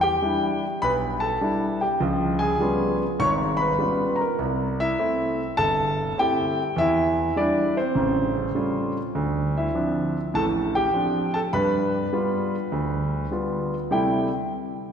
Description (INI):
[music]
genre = solo jazz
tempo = 101 BPM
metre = 4/4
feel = swing 67% on 8ths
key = C major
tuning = A4 = 441 Hz
[part]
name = warm concert grand piano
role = solo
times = 0.0-14.3 s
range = G1 to Db6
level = -21 LUFS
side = equal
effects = none
[sound]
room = wet church reverb, RT60 2.9 s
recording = recorded in a church or concert hall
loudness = -21 LUFS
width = side -7 dB against mid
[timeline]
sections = 0.0-9.1 A section; 9.1-13.9 B section; 13.9-14.9 C section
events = none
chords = 0.0 Em7; 2.0 Db7#11; 4.4 C6; 6.8 Em7; 8.0 A7alt; 9.1 Dm7; 11.5 G7; 13.9 C6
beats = 0.21 0.81 1.40 | 2.00 2.60 3.19 3.79 | 4.38 4.98 5.57 6.17 | 6.76 7.36 7.95 8.55 | 9.14 9.74 10.34 10.93 | 11.53 12.12 12.72 13.31 | 13.91